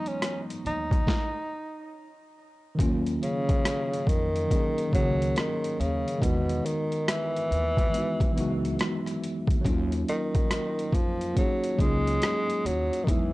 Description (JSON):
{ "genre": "lo-fi hip hop", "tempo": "70 BPM", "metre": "4/4", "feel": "swing 63% on 16ths", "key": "Eb phrygian", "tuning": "A4 = 439 Hz", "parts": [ { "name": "breathy tenor saxophone", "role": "melody", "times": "0.0-13.3 s", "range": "B2 to D#4", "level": "-30 LUFS", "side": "equal", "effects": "low-pass filter, plate reverb, analog delay" }, { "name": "tine electric piano", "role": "accompaniment", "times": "0.0-13.3 s", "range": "Eb3 to Ab4", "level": "-30 LUFS", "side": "equal", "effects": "medium stereo tremolo, low-pass filter, plate reverb" }, { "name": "boom bap sampler-style drum kit", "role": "drums", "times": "0.1-13.3 s", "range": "hi-hat, kick drum, rim click, snare drum", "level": "-27 LUFS", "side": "equal", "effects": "overdrive" }, { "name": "upright bass", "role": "bass", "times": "0.7-13.3 s", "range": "Db2 to F2", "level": "-31 LUFS", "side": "equal", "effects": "none" } ], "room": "light reverb", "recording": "dry, gritty hardware recording, transformer saturation, cassette tape, nothing above 10.9 kHz", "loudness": "-24 LUFS", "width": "side -19 dB against mid", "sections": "0.0-2.8 A section; 2.8-13.3 A section", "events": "stop 1.1-2.8", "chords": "0.0 Emaj7; 1.1 N.C.; 2.8 Ebm9; 6.2 Emaj7; 9.6 Ebm9" }